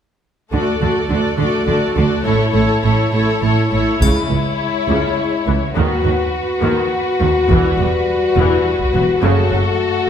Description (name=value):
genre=cinematic, epic orchestral film score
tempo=69 BPM (dotted quarters)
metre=6/8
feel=straight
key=unclear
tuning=A4 = 440 Hz
part: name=warm symphonic violin section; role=second line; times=0.5-10.1 s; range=E4 to D5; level=-20 LUFS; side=left 4 dB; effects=none
part: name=rich symphonic viola section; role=accompaniment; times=0.5-9.6 s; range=C#3 to F#4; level=-21 LUFS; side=equal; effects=none
part: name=rich symphonic double bass section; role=bass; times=0.5-9.6 s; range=E1 to D#2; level=-20 LUFS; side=right 2 dB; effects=none
part: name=warm symphonic cello section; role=bass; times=0.5-9.6 s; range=C#2 to D3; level=-21 LUFS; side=right 3 dB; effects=none
part: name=rich symphonic violin section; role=melody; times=4.0-10.1 s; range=A4 to C#5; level=-25 LUFS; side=left 5 dB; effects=none
part: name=mellow French horn section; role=sustained chords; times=4.0-10.1 s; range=G3 to F#4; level=-20 LUFS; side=left 3 dB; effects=none
part: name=taiko ensemble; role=drums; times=4.0-9.1 s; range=none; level=-20 LUFS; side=equal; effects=none
part: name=triangle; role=percussion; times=4.0-5.1 s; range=none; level=-29 LUFS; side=left 4 dB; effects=none
room=wet recital hall reverb, RT60 1.4 s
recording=recorded in a church or concert hall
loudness=-14 LUFS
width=side -8 dB against mid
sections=0.5-4.0 A section; 4.0-10.1 B section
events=build-up 4.0-10.1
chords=0.5 D; 2.3 A; 4.0 C#m; 5.8 B/D#; 7.5 Emadd9; 9.2 F#m